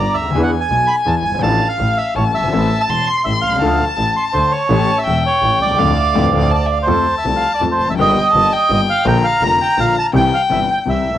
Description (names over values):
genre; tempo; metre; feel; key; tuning
tango; 166 BPM; 3/4; rubato; D minor, F major from 6.9 s; A4 = 440 Hz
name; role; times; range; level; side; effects
bandoneon; melody; 0.0-11.2 s; C5 to C6; -17 LUFS; right 4 dB; none
warm violin; second line; 0.0-11.0 s; E5 to C6; -19 LUFS; left 4 dB; cassette tape
warm concert grand piano; accompaniment; 0.0-11.2 s; E1 to A4; -20 LUFS; left 5 dB; cassette tape
bright double bass; bass; 0.0-11.2 s; E1 to F2; -20 LUFS; right 2 dB; none
vibraphone with medium hard mallets; second line; 6.0-6.9 s; B4 to E5; -26 LUFS; right 8 dB; cassette tape
room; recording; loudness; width
moderate spring reverb, RT60 1.8 s, small room ambience; home recording on cassette; -13 LUFS; side -12 dB against mid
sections
0.0-6.9 A section; 6.9-11.2 B section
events
band accent 5.8-6.9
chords
0.3 E7; 1.4 Dm/A; 2.2 A; 2.5 Am; 3.6 Dm; 4.7 A7; 5.8 Dm; 6.9 F; 8.0 Eb/G; 9.1 Bb; 10.1 C